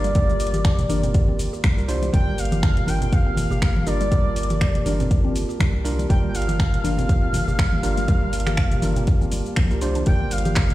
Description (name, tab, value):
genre	afro house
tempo	121 BPM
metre	4/4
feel	swing 56% on 16ths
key	G minor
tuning	A4 = 440 Hz
part	expressive portamento lead	melody	0.0-10.7 s	D5 to G5	-29 LUFS	equal	wide subtle chorus, dub echo
part	dark analog pad	sustained chords	0.0-10.7 s	Bb3 to A5	-33 LUFS	left 2 dB	chorus, sidechain pumping
part	mallet-like synth pluck	arpeggios	0.0-10.7 s	D3 to G4	-32 LUFS	left 1 dB	chorus, phaser, sidechain pumping, dub echo
part	bell-like tine electric piano	stabs	0.0-10.7 s	G3 to C5	-30 LUFS	right 3 dB	sidechain pumping, dub echo
part	round analog bass	bass	0.0-10.7 s	G1 to C2	-25 LUFS	equal	sidechain pumping
part	deep house drum kit	drums	0.0-10.7 s	cabasa, finger snaps, handclaps, hi-hat	-31 LUFS	equal	none
part	electronic kick drum	drums	0.2-10.7 s	none	-19 LUFS	equal	none
part	congas	percussion	0.5-10.7 s	none	-28 LUFS	equal	none
room	digital ambience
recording	played on a big sound system in a bare room, large studio reverb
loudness	-18 LUFS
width	side -16 dB against mid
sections	0.0-10.7 A section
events	none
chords	0.0 Gm7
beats	| 0.15 0.65 1.14 1.64 | 2.13 2.63 3.12 3.62 | 4.12 4.61 5.11 5.60 | 6.10 6.60 7.09 7.59 | 8.08 8.58 9.07 9.57 | 10.07 10.56